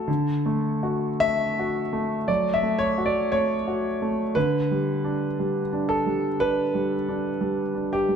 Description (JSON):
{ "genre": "neoclassical minimalist piano", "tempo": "51-61 BPM", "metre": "4/4", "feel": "rubato", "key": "D major", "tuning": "A4 = 439 Hz", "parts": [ { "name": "warm concert grand piano", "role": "solo", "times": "0.0-8.2 s", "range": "D3 to E5", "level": "-22 LUFS", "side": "equal", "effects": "none" } ], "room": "moderate scoring stage reverb, RT60 1.5 s", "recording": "dark, warm production", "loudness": "-22 LUFS", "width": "side -7 dB against mid", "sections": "0.1-8.2 A section", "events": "none", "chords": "0.1 D; 4.4 G/D" }